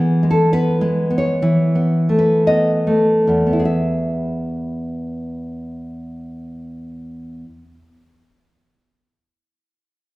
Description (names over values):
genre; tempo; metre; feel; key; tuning
romantic piece for solo classical guitar; 46-71 BPM; 2/4; rubato; E major; A4 = 440 Hz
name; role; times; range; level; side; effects
nylon-string guitar; solo; 0.0-7.8 s; E2 to E5; -16 LUFS; equal; none
room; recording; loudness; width
wet recital hall reverb, RT60 1.7 s; recorded in a church or concert hall; -15 LUFS; side -19 dB against mid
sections
0.0-3.7 A section; 3.7-7.9 B section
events
slowing down 0.0-3.7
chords
0.0 E; 1.4 B7/E; 3.7 E